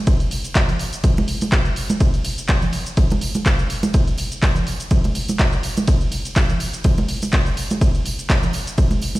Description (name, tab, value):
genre	house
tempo	124 BPM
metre	4/4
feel	swing 55% on 16ths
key	none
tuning	none
part	electronic kick drum	drums	0.1-8.9 s	none	-17 LUFS	equal	studio reverb
part	punchy analog drum machine	drums	0.1-9.2 s	handclaps, hi-hat, ride cymbal, shaker	-25 LUFS	equal	sidechain pumping on hats, studio reverb, sidechain pumping on perc, sidechain pumping on cymbals
part	tambourine and congas	percussion	0.1-9.2 s	none	-26 LUFS	right 3 dB	sidechain pumping on perc
room	little or no reverb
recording	played on a big sound system in a bare room, stone room reverb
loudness	-17 LUFS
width	side -18 dB against mid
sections	0.0-9.2 A section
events	none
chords	none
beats	| 0.07 0.56 1.04 1.52 | 2.01 2.49 2.97 3.46 | 3.94 4.43 4.91 5.39 | 5.88 6.36 6.84 7.33 | 7.81 8.30 8.78